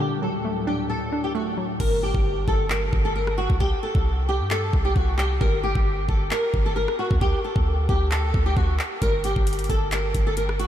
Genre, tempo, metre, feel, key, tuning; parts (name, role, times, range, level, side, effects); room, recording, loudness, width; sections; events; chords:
hip hop, trap; 133 BPM; 4/4; half-time; G harmonic minor; A4 = 440 Hz
flamenco guitar; melody; 0.0-10.7 s; F#4 to Bb4; -26 LUFS; left 1 dB; ensemble chorus, low-pass filter, tape echo
hollow square pluck; accompaniment; 0.0-1.8 s; D3 to D4; -30 LUFS; right 1 dB; chorus, low-pass filter
warbly tape-like pad; sustained chords; 0.0-1.8 s; D2 to F#3; -32 LUFS; left 3 dB; chorus, built-in reverb, low-pass filter
warm 808-style bass; bass; 1.8-10.7 s; G1 to G2; -24 LUFS; equal
trap drum kit; drums; 1.8-10.7 s; crash cymbal, handclaps, hi-hat, kick drum, rim click; -25 LUFS; equal
moderate huge ambient reverb, RT60 8.4 s; dreamy mix soaked in reverb; -20 LUFS; side -11 dB against mid
0.0-1.8 A section; 1.8-10.7 B section
hi-hats muted 1.8-9.0
0.0 D; 1.8 Gm; 3.6 C5; 5.4 G5; 7.2 D5; 9.0 Gm